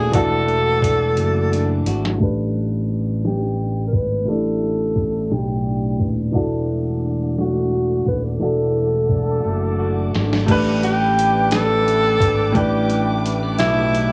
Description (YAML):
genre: slow six-eight R&B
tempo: 58 BPM (dotted quarters)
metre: 6/8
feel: straight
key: unclear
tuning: A4 = 440 Hz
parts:
  - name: breathy tenor saxophone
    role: melody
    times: 0.0-14.1 s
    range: E4 to B4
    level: -23 LUFS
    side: equal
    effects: none
  - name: electric guitar at the edge of break-up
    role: second line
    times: 0.0-14.1 s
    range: A2 to F#4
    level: -29 LUFS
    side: equal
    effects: phaser
  - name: clear grand piano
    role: accompaniment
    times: 0.0-14.1 s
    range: A2 to B4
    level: -27 LUFS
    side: equal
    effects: none
  - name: dark studio string section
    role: sustained chords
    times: 0.0-2.2, 6.3-14.1 s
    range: A3 to D6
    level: -34 LUFS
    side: equal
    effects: none
  - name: fingered electric bass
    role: bass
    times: 0.0-14.1 s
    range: D#1 to B1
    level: -25 LUFS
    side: equal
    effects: none
  - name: dusty soul sampler-style drum kit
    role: drums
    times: 0.1-14.1 s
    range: crash cymbal, hi-hat, kick drum, snare drum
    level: -26 LUFS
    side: equal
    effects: none
room: moderate studio reverb, RT60 0.5 s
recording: worn, warbling old tape, cassette tape, warbly pitch drift, low-pass filter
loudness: -19 LUFS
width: mono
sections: 0.0-2.2 A section; 2.2-10.5 B section; 10.5-14.1 A section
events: drum fill 1.2-2.2, 9.4-10.5; filter sweep 2.2-10.5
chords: 0.0 E9sus4; 2.2 A9sus4; 6.3 E9sus4; 10.5 A9sus4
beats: | 0.14 1.17 | 2.21 3.24 | 4.28 5.31 | 6.34 7.38 | 8.41 9.45 | 10.48 11.52 | 12.55 13.59